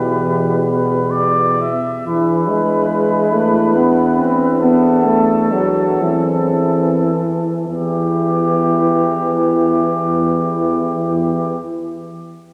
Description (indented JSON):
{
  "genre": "classical, hymn-like piece for brass band",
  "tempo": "33-48 BPM (dotted quarters)",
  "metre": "6/8",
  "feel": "rubato",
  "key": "E minor",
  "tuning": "A4 = 445 Hz",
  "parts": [
    { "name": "warm cornet", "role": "melody", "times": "0.0-11.6 s", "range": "G4 to E5", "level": "-23 LUFS", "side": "equal", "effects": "none" },
    { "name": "mellow French horn section", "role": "second line", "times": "0.0-11.6 s", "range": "E4 to G4", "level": "-24 LUFS", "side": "equal", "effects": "none" },
    { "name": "clear trombone", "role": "accompaniment", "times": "0.0-11.6 s", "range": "B2 to C4", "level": "-20 LUFS", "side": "equal", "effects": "none" },
    { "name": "warm euphonium", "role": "accompaniment", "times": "0.0-11.6 s", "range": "E3 to D4", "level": "-27 LUFS", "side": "equal", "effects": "none" },
    { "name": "clear tuba", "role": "bass", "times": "0.0-11.6 s", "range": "E2", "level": "-23 LUFS", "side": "equal", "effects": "none" }
  ],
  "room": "wet concert hall reverb, RT60 2.4 s",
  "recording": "none",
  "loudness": "-16 LUFS",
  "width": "mono",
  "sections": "0.0-2.1 A section; 2.1-7.7 B section; 7.7-10.8 C section",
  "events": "slowing down 0.6-7.7",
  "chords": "0.0 Em; 2.1 E7; 4.6 Am/E; 7.7 Em",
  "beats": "0.64 | 2.06 3.33 | 4.61 6.01 | 7.69 9.26"
}